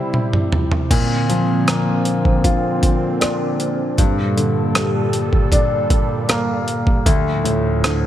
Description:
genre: pop ballad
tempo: 78 BPM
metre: 4/4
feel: straight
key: unclear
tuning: A4 = 441 Hz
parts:
  - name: clear concert grand piano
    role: accompaniment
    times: 0.0-8.1 s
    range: D2 to C5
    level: -19 LUFS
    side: left 2 dB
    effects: wide subtle chorus
  - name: sweeping resonant pad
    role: sustained chords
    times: 0.0-8.1 s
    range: D2 to A4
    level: -22 LUFS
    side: right 2 dB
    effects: wide subtle chorus
  - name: boom bap sampler-style drum kit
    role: drums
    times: 0.1-8.0 s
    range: crash cymbal, hi-hat, kick drum, rim click, toms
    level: -19 LUFS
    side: equal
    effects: overdrive
room: moderate plate reverb, RT60 3.7 s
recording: bright 1980s-style digital production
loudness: -15 LUFS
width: side -12 dB against mid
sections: 0.9-8.1 A section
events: drum fill 0.0-0.9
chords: 0.0 C; 0.9 Bbadd9; 4.0 Gmadd9; 7.1 Dm

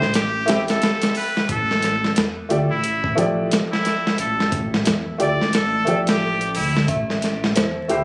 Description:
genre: trip hop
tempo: 89 BPM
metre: 4/4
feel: swing 60% on 16ths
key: unclear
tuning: A4 = 440 Hz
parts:
  - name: trumpet with straight mute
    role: melody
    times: 0.0-6.9 s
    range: E4 to D5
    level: -23 LUFS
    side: equal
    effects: dub echo
  - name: dark detuned saw bass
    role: bass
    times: 0.0-8.0 s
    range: A1 to E2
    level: -25 LUFS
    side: equal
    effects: none
  - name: dusty soul sampler-style drum kit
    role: drums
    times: 0.0-8.0 s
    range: hi-hat, kick drum, snare drum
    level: -21 LUFS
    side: equal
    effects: overdrive, small room reverb
  - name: felt-muted upright piano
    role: accompaniment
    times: 0.5-8.0 s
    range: F3 to D5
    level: -23 LUFS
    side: equal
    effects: tremolo, vintage 12-bit sampler grit
  - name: dark detuned synth bell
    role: arpeggios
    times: 6.9-8.0 s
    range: C5 to E5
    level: -26 LUFS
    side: equal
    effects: chorus, tape echo
room: light reverb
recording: recorded on a phone in the room, club reverb, vinyl crackle, compression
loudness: -17 LUFS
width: side -26 dB against mid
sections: 0.0-8.0 A section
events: none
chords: 0.0 Am7; 1.5 F6/A; 6.9 Am7

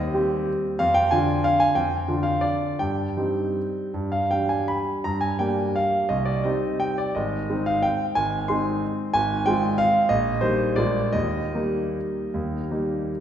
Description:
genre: classical, piano waltz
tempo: 146-200 BPM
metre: 3/4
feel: rubato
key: C minor, Eb major from 5.1 s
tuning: A4 = 438 Hz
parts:
  - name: bright concert grand piano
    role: solo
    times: 0.0-13.2 s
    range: Ab1 to C6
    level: -21 LUFS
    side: equal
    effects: none
room: wet scoring stage reverb, RT60 1.7 s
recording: heard from further back in the room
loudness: -21 LUFS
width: side -9 dB against mid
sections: 0.0-13.2 A section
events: none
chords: 0.0 Cm/Eb; 0.8 Ddim/F; 2.8 Cm/G; 3.9 G; 5.1 Gm; 6.1 Cm; 7.2 Ab; 9.1 Fm/Ab; 10.1 Eb/Bb; 10.8 Bb7; 11.1 Eb

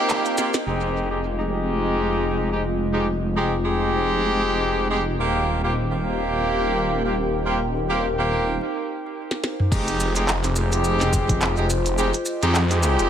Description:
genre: glitch hop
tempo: 106 BPM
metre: 4/4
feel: swing 56% on 16ths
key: F minor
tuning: A4 = 439 Hz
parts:
  - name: warbly tape-like pad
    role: sustained chords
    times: 0.0-13.1 s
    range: Ab3 to G5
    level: -30 LUFS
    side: equal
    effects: chorus, built-in reverb, vintage 12-bit sampler grit, sidechain pumping
  - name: bright horn section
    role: stabs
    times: 0.0-13.1 s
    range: Ab3 to G4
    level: -23 LUFS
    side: equal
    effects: vintage 12-bit sampler grit, sidechain pumping, low-pass filter, dub echo
  - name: airy breathy pad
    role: texture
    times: 0.0-8.6 s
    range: Ab3 to Eb5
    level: -29 LUFS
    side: left 1 dB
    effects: chorus, sidechain pumping
  - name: glitchy drum kit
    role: drums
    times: 0.1-0.6, 9.3-13.1 s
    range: crash cymbal, handclaps, hi-hat, snare drum, toms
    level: -26 LUFS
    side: equal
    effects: none
  - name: maracas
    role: percussion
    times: 0.1-0.6, 9.7-13.1 s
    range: none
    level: -33 LUFS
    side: right 1 dB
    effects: dub echo
  - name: phased detuned saw bass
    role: bass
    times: 0.7-13.1 s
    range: Eb1 to F2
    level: -24 LUFS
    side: equal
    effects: phaser, tube saturation
  - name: electronic kick drum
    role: drums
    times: 9.7-11.4 s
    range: none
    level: -23 LUFS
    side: equal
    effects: overdrive
room: moderate echo chamber reverb, RT60 1.6 s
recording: echo-heavy mix, vinyl crackle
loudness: -20 LUFS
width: side -9 dB against mid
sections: 0.7-9.7 A section; 9.7-13.1 B section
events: break 0.0-0.7, 8.6-9.7; band accent 0.1; drum fill 0.4, 9.3-9.7; filter sweep on horn section 0.7-9.7; filter sweep on ambient pad 0.7-9.7; drop 9.7-13.1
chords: 0.0 Eb6; 0.7 Fm7; 5.2 Eb6; 9.7 Fm7

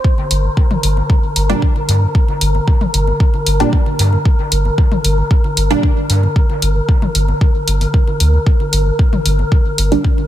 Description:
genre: dub techno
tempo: 114 BPM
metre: 4/4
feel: straight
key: unclear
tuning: A4 = 440 Hz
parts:
  - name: electronic kick drum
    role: drums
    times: 0.0-10.2 s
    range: none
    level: -12 LUFS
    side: equal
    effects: none
  - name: wind-like tuned noise texture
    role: texture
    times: 0.0-10.3 s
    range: Bb4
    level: -22 LUFS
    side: left 1 dB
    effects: built-in reverb, sidechain pumping
  - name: electronic congas and toms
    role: percussion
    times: 0.2-10.3 s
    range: none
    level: -23 LUFS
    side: left 2 dB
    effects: overdrive, sidechain pumping on perc, sidechain pumping on toms, dub echo
  - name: soft dub sub bass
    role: bass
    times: 0.3-10.0 s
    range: G1 to G2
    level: -14 LUFS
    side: equal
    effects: sidechain pumping
  - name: electronic hi-hat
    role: drums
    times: 0.3-10.0 s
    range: none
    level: -18 LUFS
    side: left 1 dB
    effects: none
  - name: filtered dub chord stab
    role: stabs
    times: 1.5-5.8, 9.9-10.0 s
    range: Bb2 to D4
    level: -19 LUFS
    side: right 2 dB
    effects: chorus, phaser, sidechain pumping, dub echo
room: little or no reverb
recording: none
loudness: -12 LUFS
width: side -12 dB against mid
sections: 0.0-10.3 A section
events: filter sweep on synth stab 0.0-10.3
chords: 0.0 Gm

